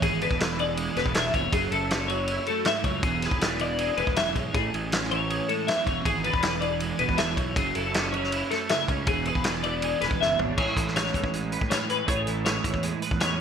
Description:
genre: math rock and midwest emo.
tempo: 159 BPM.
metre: 4/4.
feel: straight.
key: A major.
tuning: A4 = 440 Hz.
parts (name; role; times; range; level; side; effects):
twelve-string electric guitar; accompaniment; 0.0-13.4 s; E2 to B4; -30 LUFS; right 9 dB; ensemble chorus.
twelve-string electric guitar; arpeggios; 0.0-13.4 s; G#4 to E5; -28 LUFS; left 5 dB; analog chorus.
fuzz fingered electric bass; bass; 0.0-13.4 s; E1 to A2; -32 LUFS; equal; overdrive.
loose indie drum kit; drums; 0.0-13.3 s; crash cymbal, hi-hat, kick drum, ride cymbal, snare drum, toms; -28 LUFS; equal; gated reverb.
room: moderate plate reverb, RT60 1.1 s, studio ambience.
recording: bright 1980s-style digital production.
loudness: -23 LUFS.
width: side -7 dB against mid.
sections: 0.0-10.6 A section; 10.6-13.4 B section.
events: drum fill 10.2-10.6.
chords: 0.0 E7; 1.5 F#m7; 3.0 E7; 4.5 Amaj7; 5.9 E7; 7.6 F#m7; 9.1 E7; 10.6 Amaj7.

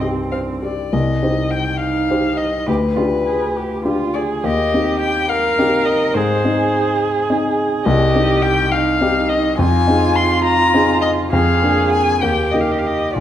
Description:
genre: quick classical-period movement for piano trio.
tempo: 69 BPM (dotted quarters).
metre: 6/8.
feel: rubato.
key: C minor, Eb major from 7.9 s.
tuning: A4 = 440 Hz.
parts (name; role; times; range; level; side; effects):
muted violin; melody; 0.0-13.2 s; B4 to C6; -19 LUFS; left 4 dB; none.
muted cello; second line; 0.0-13.2 s; C4 to Bb4; -20 LUFS; right 4 dB; none.
dark grand piano; accompaniment; 0.0-13.2 s; Bb1 to C5; -18 LUFS; left 1 dB; none.
room: wet recital hall reverb, RT60 1.5 s.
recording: none.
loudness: -14 LUFS.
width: side -11 dB against mid.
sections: 0.9-13.2 A section.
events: none.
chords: 0.0 Cm; 2.7 G7/D; 4.4 Cm/Eb; 6.2 Ab; 7.9 Cm; 9.6 Fm7; 11.3 Bb7/F; 12.2 Eb.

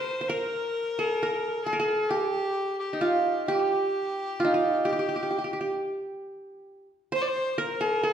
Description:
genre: Arabic maqam ensemble.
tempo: 132 BPM (eighths).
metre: 10/8.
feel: straight.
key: G maqam bayati.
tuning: A4 = 440 Hz.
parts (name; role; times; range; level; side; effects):
qanun; melody; 0.0-8.1 s; Eb4 to C5; -26 LUFS; right 1 dB; none.
rich violin; second line; 0.0-8.1 s; G4 to D5; -32 LUFS; left 2 dB; none.
room: wet recital hall reverb, RT60 1.3 s.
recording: recorded in a church or concert hall.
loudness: -25 LUFS.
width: side -8 dB against mid.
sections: 0.0-8.1 A section.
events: none.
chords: none.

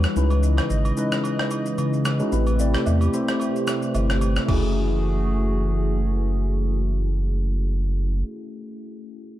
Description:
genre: amapiano.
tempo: 111 BPM.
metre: 4/4.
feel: swing 55% on 16ths.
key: F# minor.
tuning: A4 = 441 Hz.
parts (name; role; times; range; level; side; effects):
mellow tine electric piano; accompaniment; 0.0-9.4 s; G3 to D5; -26 LUFS; left 2 dB; phaser.
hollow soft pad; sustained chords; 0.0-8.2 s; C3 to D#5; -30 LUFS; right 2 dB; chorus.
saturated sub bass; bass; 0.0-8.2 s; F#1 to C#3; -21 LUFS; equal; none.
breakbeat sampler-style drum kit; drums; 0.0-4.6 s; crash cymbal, kick drum, rim click, shaker; -29 LUFS; equal; none.
agogo bells and woodblock; percussion; 0.3-4.7 s; none; -36 LUFS; right 4 dB; none.
room: light reverb, digital ambience.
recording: dark, warm production.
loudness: -20 LUFS.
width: side -14 dB against mid.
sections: 0.0-4.5 A section; 4.5-8.8 B section.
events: none.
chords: 0.2 C#m9; 2.3 Am9; 4.5 F#m9.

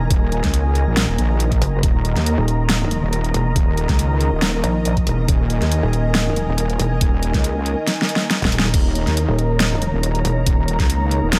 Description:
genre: heavy wobble dubstep.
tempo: 139 BPM.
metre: 4/4.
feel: swing 54% on 16ths, half-time.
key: unclear.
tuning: A4 = 440 Hz.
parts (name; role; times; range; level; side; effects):
muted studio string section; sustained chords; 0.0-11.4 s; Eb3 to Bb5; -28 LUFS; equal; sidechain pumping, low-pass filter.
metallic wobble bass; bass; 0.0-10.4 s; Eb1 to Bb1; -21 LUFS; equal; chorus, overdrive.
ethereal airy pad; texture; 0.0-11.4 s; Eb4 to Bb5; -31 LUFS; equal; ensemble chorus, built-in reverb, phaser, sidechain pumping.
wobble bass; bass; 0.1-11.4 s; Eb1 to Eb2; -22 LUFS; equal; chorus, overdrive.
dubstep drum kit; drums; 0.1-11.4 s; crash cymbal, hi-hat, snare drum; -24 LUFS; equal; overdrive.
electronic kick drum; drums; 0.1-10.9 s; none; -21 LUFS; equal; overdrive.
room: little or no reverb.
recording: none.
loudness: -19 LUFS.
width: mono.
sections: 0.0-11.4 A section.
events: drum fill 7.9-8.7.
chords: 0.0 Eb5.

